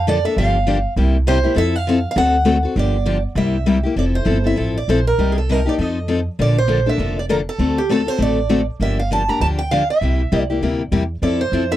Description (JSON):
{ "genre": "acoustic string swing (jazz manouche)", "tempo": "199 BPM", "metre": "4/4", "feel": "swing 59% on 8ths", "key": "F major", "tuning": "A4 = 440 Hz", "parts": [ { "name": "picked steel-string acoustic guitar", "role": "melody", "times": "0.0-11.8 s", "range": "G4 to Bb5", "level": "-21 LUFS", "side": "right 3 dB", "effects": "none" }, { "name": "upright bass", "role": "bass", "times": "0.0-11.8 s", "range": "F1 to F2", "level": "-20 LUFS", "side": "right 1 dB", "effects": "none" }, { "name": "picked steel-string acoustic guitar", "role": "accompaniment", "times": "0.1-11.8 s", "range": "C3 to A4", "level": "-19 LUFS", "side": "left 4 dB", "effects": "none" } ], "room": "little or no reverb", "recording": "dry, close 1970s-style studio recording", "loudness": "-15 LUFS", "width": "side -13 dB against mid", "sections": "0.0-4.0 A section; 4.0-11.8 B section", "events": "none", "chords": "0.4 Gm7; 1.0 C7; 1.6 Fmaj7; 2.2 D7; 2.8 Gm7; 3.4 C7; 4.0 Fmaj7; 5.2 Cm7; 5.8 F7; 6.4 Bbmaj7; 7.6 D7; 8.8 Gm7; 10.0 C7; 11.2 Fmaj7" }